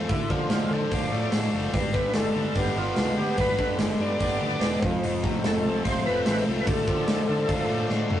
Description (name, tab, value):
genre	classic rock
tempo	146 BPM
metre	4/4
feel	straight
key	unclear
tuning	A4 = 444 Hz
part	cranked stack guitar	riff	0.0-8.2 s	F2 to D4	-30 LUFS	left 4 dB	overdrive
part	distorted electric guitar	riff	0.0-8.2 s	D3 to B4	-32 LUFS	right 3 dB	distortion
part	picked electric bass	bass	0.0-8.2 s	E1 to D3	-32 LUFS	right 1 dB	none
part	overdriven tonewheel organ	melody	0.1-7.9 s	E4 to D5	-29 LUFS	equal	slow rotary speaker, chorus vibrato
part	big rock drum kit	drums	0.1-8.2 s	hi-hat, kick drum, snare drum, toms	-27 LUFS	equal	none
part	honky-tonk upright piano	accompaniment	1.7-8.2 s	C4 to D5	-38 LUFS	right 2 dB	none
part	picked old ladder-braced acoustic guitar	accompaniment	1.7-8.2 s	F2 to G4	-38 LUFS	left 1 dB	none
room	moderate booth ambience, RT60 0.3 s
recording	rough rehearsal-room recording, tube saturation, nothing above 10.3 kHz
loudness	-22 LUFS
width	side -11 dB against mid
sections	0.0-8.2 A section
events	drum fill 7.9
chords	0.1 Dm; 1.7 G; 4.8 F; 6.7 Dm